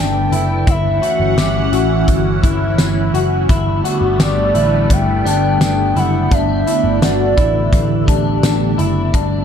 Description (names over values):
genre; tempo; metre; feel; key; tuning
dream pop; 85 BPM; 4/4; straight; unclear; A4 = 440 Hz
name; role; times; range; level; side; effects
hollow clarinet-like synth lead; melody; 0.0-8.4 s; D5 to G5; -21 LUFS; right 1 dB; chorus, ping-pong delay
phased analog pad; sustained chords; 0.0-9.4 s; D3 to G5; -20 LUFS; right 2 dB; phaser, chorus
electric guitar at the edge of break-up; arpeggios; 0.0-9.4 s; D4 to G4; -20 LUFS; left 4 dB; ensemble chorus, ping-pong delay
vintage muted picked electric bass; bass; 0.0-9.4 s; F#1 to A1; -18 LUFS; equal; none
loose indie drum kit; drums; 0.3-9.3 s; hi-hat, kick drum, snare drum, tambourine; -18 LUFS; equal; none
room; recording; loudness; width
light reverb; dark, warm production; -12 LUFS; side -8 dB against mid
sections
0.0-9.1 A section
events
none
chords
0.0 A9sus4/G; 0.7 F#m7/G; 3.5 A9sus4/G; 6.3 Bm7/G; 7.7 A9sus4